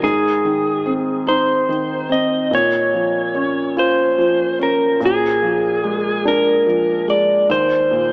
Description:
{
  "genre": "pop",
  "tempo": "48 BPM (dotted quarters)",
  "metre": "6/8",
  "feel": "straight",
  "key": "Bb minor",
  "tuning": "A4 = 440 Hz",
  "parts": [
    { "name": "clean lap steel guitar", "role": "melody", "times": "0.0-8.1 s", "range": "Ab4 to Eb5", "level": "-19 LUFS", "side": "equal", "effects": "tape echo" },
    { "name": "felt-muted upright piano", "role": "accompaniment", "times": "0.0-8.1 s", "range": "Eb2 to F4", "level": "-22 LUFS", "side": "equal", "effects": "none" }
  ],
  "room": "wet plate reverb, RT60 3.6 s",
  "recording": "echo-heavy mix, small speaker sound",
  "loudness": "-17 LUFS",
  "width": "mono",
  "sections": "0.0-8.1 A section",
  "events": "none",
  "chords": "0.0 Ab; 2.5 Bbm; 5.0 Bb7; 7.5 Eb5",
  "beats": "| 0.03 1.27 | 2.52 3.78 | 5.02 6.25 | 7.49"
}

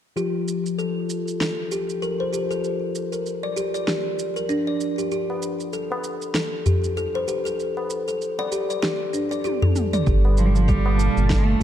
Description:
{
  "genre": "organic downtempo",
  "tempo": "97 BPM",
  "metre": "4/4",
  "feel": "swing 58% on 16ths",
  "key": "G minor",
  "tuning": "A4 = 440 Hz",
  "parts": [
    { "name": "kalimba", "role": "arpeggios", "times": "0.2-11.6 s", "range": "D4 to D5", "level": "-25 LUFS", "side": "left 1 dB", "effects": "low-pass filter, ping-pong delay" },
    { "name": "deep house drum kit", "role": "drums", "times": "0.2-11.6 s", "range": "shaker, snare drum, toms", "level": "-28 LUFS", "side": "right 1 dB", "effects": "overdrive" },
    { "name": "bronze singing bowl", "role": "texture", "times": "0.2-10.1 s", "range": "F3 to F4", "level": "-32 LUFS", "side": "left 4 dB", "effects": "none" },
    { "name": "tabla", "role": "percussion", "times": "5.3-11.6 s", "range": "none", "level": "-26 LUFS", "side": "left 1 dB", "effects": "none" },
    { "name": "warm analog pad", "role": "sustained chords", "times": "10.1-11.6 s", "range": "Bb2 to A5", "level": "-27 LUFS", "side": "right 5 dB", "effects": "chorus, tremolo, sidechain pumping" },
    { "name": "round analog bass", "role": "bass", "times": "10.1-11.6 s", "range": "G1", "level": "-19 LUFS", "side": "equal", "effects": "none" },
    { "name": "electronic kick drum", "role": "drums", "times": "10.1-11.4 s", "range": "none", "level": "-22 LUFS", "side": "equal", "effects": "overdrive" },
    { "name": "rich cello", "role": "melody", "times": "10.4-11.6 s", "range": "F3 to A3", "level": "-24 LUFS", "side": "right 3 dB", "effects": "none" }
  ],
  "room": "moderate lush hall reverb, RT60 1.9 s, studio ambience",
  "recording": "dark, warm production",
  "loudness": "-21 LUFS",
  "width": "side -10 dB against mid",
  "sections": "0.2-10.1 A section; 10.1-11.6 B section",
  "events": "drum fill 9.4-10.1; filter sweep on kalimba 10.1-11.6",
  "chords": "0.2 G7sus2; 5.1 Fadd9; 10.1 Gm9",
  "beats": "| 0.17 0.79 1.41 2.02 | 2.64 3.26 3.88 4.50 | 5.12 5.74 6.36 6.97 | 7.59 8.21 8.83 9.45 | 10.07 10.69 11.30"
}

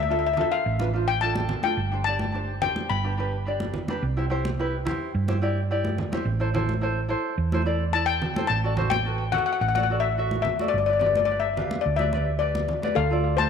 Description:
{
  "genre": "calypso",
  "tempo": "107 BPM",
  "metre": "4/4",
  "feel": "straight",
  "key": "unclear",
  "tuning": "A4 = 440 Hz",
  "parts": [
    { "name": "steel pan", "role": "melody", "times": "0.0-3.7, 7.9-13.5 s", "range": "A4 to B5", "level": "-25 LUFS", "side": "left 8 dB", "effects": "tape echo" },
    { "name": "hollow-body short-scale fingered electric bass", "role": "bass", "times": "0.0-13.5 s", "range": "G1 to G2", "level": "-26 LUFS", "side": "right 2 dB", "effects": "none" },
    { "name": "tenor ukulele", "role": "accompaniment", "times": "0.1-13.4 s", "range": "D4 to F5", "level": "-29 LUFS", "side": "right 1 dB", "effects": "none" },
    { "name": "congas", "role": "percussion", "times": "0.4-13.5 s", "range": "none", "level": "-32 LUFS", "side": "right 1 dB", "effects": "none" }
  ],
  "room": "moderate echo chamber reverb, RT60 2.4 s",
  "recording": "none",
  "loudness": "-22 LUFS",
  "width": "side -7 dB against mid",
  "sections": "0.0-13.0 A section",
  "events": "none",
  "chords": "0.0 Dm; 1.8 Gsus4; 2.9 G; 4.0 Cadd9; 6.3 Am; 8.5 D/A; 10.7 G; 13.0 Dm7",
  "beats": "0.09 0.65 1.21 | 1.77 2.33 2.89 3.46 | 4.02 4.58 5.14 5.70 | 6.26 6.82 7.38 7.94 | 8.50 9.05 9.61 10.17 | 10.73 11.29 11.85 12.41 | 12.96"
}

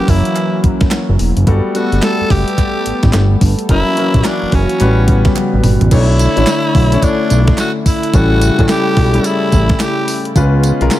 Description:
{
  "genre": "R&B, new jack swing",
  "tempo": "108 BPM",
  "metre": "4/4",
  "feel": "swing 62% on 16ths",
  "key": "B minor",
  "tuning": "A4 = 440 Hz",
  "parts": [
    { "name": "breathy tenor saxophone", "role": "melody", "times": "0.0-10.2 s", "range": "C#4 to A4", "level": "-20 LUFS", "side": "equal", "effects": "none" },
    { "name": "warm concert grand piano", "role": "accompaniment", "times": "0.0-11.0 s", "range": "F#3 to C#5", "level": "-18 LUFS", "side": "left 2 dB", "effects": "none" },
    { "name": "chorused pulse-width pad", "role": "sustained chords", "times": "0.0-11.0 s", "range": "C#3 to C#5", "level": "-19 LUFS", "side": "equal", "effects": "none" },
    { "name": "fat analog bass", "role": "bass", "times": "0.0-10.9 s", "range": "E1 to C#2", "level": "-12 LUFS", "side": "equal", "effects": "none" },
    { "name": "clean 12-bit digital drum machine", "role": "drums", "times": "0.1-11.0 s", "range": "crash cymbal, handclaps, hi-hat, kick drum, snare drum, tambourine, toms", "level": "-15 LUFS", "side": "equal", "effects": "none" },
    { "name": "group handclap", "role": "percussion", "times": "0.4-11.0 s", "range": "none", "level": "-29 LUFS", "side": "right 6 dB", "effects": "none" }
  ],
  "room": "digital ambience",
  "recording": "none",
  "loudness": "-10 LUFS",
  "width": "side -14 dB against mid",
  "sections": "0.0-5.9 A section; 5.9-11.0 B section",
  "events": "drum fill 5.4-5.9",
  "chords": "0.0 F#7; 1.5 Gmaj9; 3.7 F#7; 4.8 A13; 5.9 Bm11; 8.1 A7; 10.4 C#7",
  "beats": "0.36 0.91 | 1.47 2.02 2.58 3.14 | 3.69 4.25 4.80 5.36 | 5.91 6.47 7.03 7.58 | 8.14 8.69 9.25 9.80 | 10.36 10.91"
}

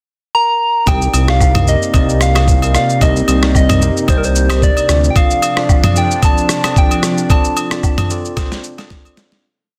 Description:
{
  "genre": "amapiano",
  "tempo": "112 BPM",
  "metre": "4/4",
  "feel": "swing 55% on 16ths",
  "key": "C dorian",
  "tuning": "A4 = 440 Hz",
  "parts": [
    { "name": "soft struck synth lead", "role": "melody", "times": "0.3-7.8 s", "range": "Bb4 to Bb5", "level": "-20 LUFS", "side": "equal", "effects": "chorus, tape echo" },
    { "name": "bell-like tine electric piano", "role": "accompaniment", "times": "0.9-9.5 s", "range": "C4 to F5", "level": "-23 LUFS", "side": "equal", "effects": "phaser" },
    { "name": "lush unison pad", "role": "sustained chords", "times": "0.9-9.4 s", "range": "C3 to Eb4", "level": "-24 LUFS", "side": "equal", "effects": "chorus, phaser, sidechain pumping" },
    { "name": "fat analog bass", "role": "bass", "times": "0.9-5.1 s", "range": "C2 to D2", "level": "-16 LUFS", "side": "equal", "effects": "none" },
    { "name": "boom bap sampler-style drum kit", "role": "drums", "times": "0.9-9.4 s", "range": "kick drum, rim click, shaker, snare drum, toms", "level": "-17 LUFS", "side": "equal", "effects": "none" },
    { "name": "agogo bells and woodblock", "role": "percussion", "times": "0.9-9.2 s", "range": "none", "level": "-26 LUFS", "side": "equal", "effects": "none" }
  ],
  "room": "light reverb, digital ambience",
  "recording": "dense, heavily limited modern master",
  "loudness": "-13 LUFS",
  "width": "mono",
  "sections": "0.0-0.9 pickup bar; 0.9-9.4 groove",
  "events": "fade-out 7.3-9.4; drum fill 8.4-9.4",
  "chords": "0.0 N.C.; 0.9 Cm7; 4.9 Dm7",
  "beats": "0.33 | 0.87 1.41 1.94 2.48 | 3.01 3.55 4.08 4.62 | 5.16 5.69 6.23 6.76 | 7.30 7.83 8.37 8.91"
}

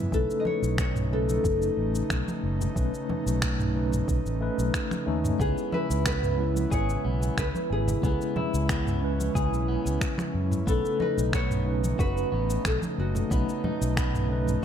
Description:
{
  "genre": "sunset chillout",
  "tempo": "91 BPM",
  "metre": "4/4",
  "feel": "straight",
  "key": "unclear",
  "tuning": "A4 = 440 Hz",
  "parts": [
    { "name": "tine electric piano", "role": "accompaniment", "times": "0.0-14.6 s", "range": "G#3 to B4", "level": "-32 LUFS", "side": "moving between left 5 dB and right 5 dB", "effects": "medium stereo tremolo, auto-pan, low-pass filter, tape echo" },
    { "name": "airy breathy pad", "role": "sustained chords", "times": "0.0-14.6 s", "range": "C#3 to E4", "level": "-34 LUFS", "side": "right 1 dB", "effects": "chorus" },
    { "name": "fingered electric bass", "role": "bass", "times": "0.0-14.6 s", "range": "F#1 to F#2", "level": "-28 LUFS", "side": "equal", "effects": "none" },
    { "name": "nylon-string guitar", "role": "melody", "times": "0.1-14.6 s", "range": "F#4 to D#5", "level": "-31 LUFS", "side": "left 1 dB", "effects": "tape echo" },
    { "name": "electronic kick drum", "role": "drums", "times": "0.1-14.1 s", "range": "none", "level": "-29 LUFS", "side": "equal", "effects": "none" },
    { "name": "smooth R&B drum kit", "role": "drums", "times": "0.1-14.6 s", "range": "cabasa, finger snaps, toms", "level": "-33 LUFS", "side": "equal", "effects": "none" },
    { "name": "congas", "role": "percussion", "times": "0.5-14.6 s", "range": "none", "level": "-36 LUFS", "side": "right 2 dB", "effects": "none" },
    { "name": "electric guitar at the edge of break-up", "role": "arpeggios", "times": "5.4-14.3 s", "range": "B3 to G#4", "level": "-36 LUFS", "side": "left 3 dB", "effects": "tape echo" }
  ],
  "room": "light reverb",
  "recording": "dark, warm production",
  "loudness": "-24 LUFS",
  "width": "side -9 dB against mid",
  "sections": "0.0-14.6 A section",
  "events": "none",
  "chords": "0.1 B9; 5.4 C#m7; 10.7 B9",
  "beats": "| 0.12 0.78 1.44 2.10 | 2.76 3.42 4.08 4.74 | 5.40 6.06 6.72 7.38 | 8.04 8.70 9.36 10.01 | 10.67 11.33 11.99 12.65 | 13.31 13.97 14.63"
}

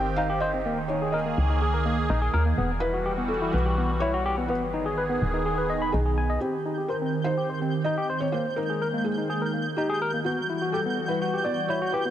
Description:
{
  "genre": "IDM",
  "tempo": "125 BPM",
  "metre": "4/4",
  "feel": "straight",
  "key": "unclear",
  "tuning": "A4 = 440 Hz",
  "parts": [
    { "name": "felt-muted upright piano", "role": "melody", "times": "0.0-12.1 s", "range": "F#4 to G5", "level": "-30 LUFS", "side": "equal", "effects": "vintage 12-bit sampler grit, tape echo" },
    { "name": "phased analog pad", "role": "sustained chords", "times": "0.0-12.1 s", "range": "Eb3 to Ab4", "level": "-29 LUFS", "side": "right 2 dB", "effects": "phaser, chorus" },
    { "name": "barky tine electric piano", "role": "arpeggios", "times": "0.0-12.1 s", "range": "Bb3 to Cb6", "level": "-29 LUFS", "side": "left 2 dB", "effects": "overdrive, low-pass filter, dub echo" },
    { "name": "woody FM bass", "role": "bass", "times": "0.0-6.4 s", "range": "Eb1 to Eb2", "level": "-28 LUFS", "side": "equal", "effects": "tube saturation" },
    { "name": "pulsing gated texture", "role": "texture", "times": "6.7-12.1 s", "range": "G6", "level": "-33 LUFS", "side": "right 3 dB", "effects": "chorus, built-in reverb" }
  ],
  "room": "light reverb",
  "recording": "none",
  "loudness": "-24 LUFS",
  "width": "side -11 dB against mid",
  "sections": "0.0-6.4 A section; 6.4-12.1 B section",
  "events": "filter sweep on analog synth pad 6.4-12.1; filter sweep on tine electric piano 6.4-12.1",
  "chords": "0.0 Cm; 0.7 Ebsus4; 2.6 Emadd9; 4.5 Abm; 6.4 Cm; 8.3 Ebsus4; 10.3 Emadd9",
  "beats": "0.18 | 0.66 1.14 1.62 2.10 | 2.58 3.06 3.54 4.02 | 4.50 4.98 5.46 5.94 | 6.42 6.90 7.38 7.86 | 8.34 8.82 9.30 9.78 | 10.26 10.74 11.22 11.70"
}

